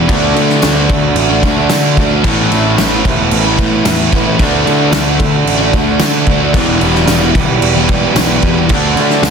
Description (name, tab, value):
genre	rock, shoegaze and dream pop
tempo	112 BPM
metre	4/4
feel	straight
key	D major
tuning	A4 = 438 Hz
part	overdriven semi-hollow guitar	riff	0.0-9.3 s	E2 to G4	-15 LUFS	right 8 dB	reverse reverb
part	overdriven semi-hollow guitar	riff	0.0-9.3 s	E2 to D4	-18 LUFS	left 2 dB	none
part	thick fuzz guitar	riff	0.0-9.3 s	E2 to D4	-18 LUFS	left 12 dB	distortion, wide subtle chorus
part	fuzz picked electric bass	bass	0.0-9.3 s	E1 to D3	-17 LUFS	equal	overdrive
part	loose indie drum kit	drums	0.1-9.3 s	crash cymbal, kick drum, snare drum	-14 LUFS	equal	none
part	tambourine	percussion	0.6-9.3 s	none	-26 LUFS	right 3 dB	none
room	light reverb, studio reverb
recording	dense, heavily limited modern master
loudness	-9 LUFS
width	side -6 dB against mid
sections	0.0-9.3 A section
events	none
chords	0.1 D; 2.2 Asus2; 4.4 D; 6.5 Em; 8.7 D